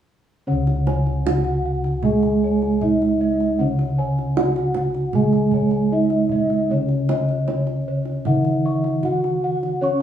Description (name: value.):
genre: Javanese gamelan.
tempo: 77 BPM.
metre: 4/4.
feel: straight.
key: unclear.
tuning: A4 = 441 Hz.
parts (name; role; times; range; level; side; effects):
gamelan-type bronze metallophone; melody; 0.5-10.0 s; C#4 to C#5; -24 LUFS; left 1 dB; none.
gamelan-type bronze metallophone; accompaniment; 0.5-10.0 s; C#3 to C#4; -21 LUFS; right 3 dB; none.
gamelan-type bossed gongs; arpeggios; 0.5-10.0 s; C#5 to C#6; -30 LUFS; left 6 dB; none.
gamelan-type bronze metallophone; arpeggios; 0.5-10.0 s; C#5 to C#6; -29 LUFS; equal; none.
gamelan-type bossed gongs; bass; 0.5-10.0 s; C#2 to C#5; -27 LUFS; left 2 dB; none.
kendang; percussion; 0.7-9.7 s; none; -28 LUFS; right 4 dB; none.
room: wet large studio reverb, RT60 0.9 s.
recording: band playing live in one room, studio ambience.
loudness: -18 LUFS.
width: side -10 dB against mid.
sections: 0.5-10.0 A section.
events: none.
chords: none.